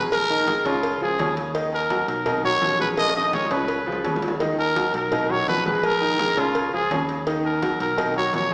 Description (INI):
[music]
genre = latin, salsa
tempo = 168 BPM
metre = 4/4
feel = straight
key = Eb minor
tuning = A4 = 440 Hz
[part]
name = growling trumpet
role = melody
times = 0.0-8.5 s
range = F4 to Eb5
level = -26 LUFS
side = equal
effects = none
[part]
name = bright concert grand piano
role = accompaniment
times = 0.0-8.5 s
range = Db3 to Eb5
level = -28 LUFS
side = equal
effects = none
[part]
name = fingered electric bass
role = bass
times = 0.0-8.5 s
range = A#1 to Eb2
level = -36 LUFS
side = equal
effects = none
[part]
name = agogo bells and timbales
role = percussion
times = 0.1-8.5 s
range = none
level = -33 LUFS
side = equal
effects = none
[part]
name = congas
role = percussion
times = 0.1-8.5 s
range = none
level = -37 LUFS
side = equal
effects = none
[part]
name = cowbell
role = percussion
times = 0.1-8.5 s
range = none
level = -34 LUFS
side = equal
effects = none
[sound]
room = wet recital hall reverb, RT60 1.5 s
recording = recorded in a church or concert hall, small speaker sound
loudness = -23 LUFS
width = mono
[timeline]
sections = 0.0-8.5 A section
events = drum fill 3.0-4.4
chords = 0.1 Bb7sus4; 0.8 Db; 1.5 Ebm; 2.3 Bmaj7; 3.0 Bb7sus4; 3.7 Db7; 4.4 Ebm; 5.1 Bmaj7; 5.8 Bb7sus4; 6.5 Db; 7.3 Ebm; 8.0 Bmaj7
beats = | 0.12 0.48 0.83 1.19 | 1.55 1.91 2.26 2.62 | 2.98 3.33 3.69 4.05 | 4.41 4.76 5.12 5.48 | 5.83 6.19 6.55 6.91 | 7.26 7.62 7.98 8.34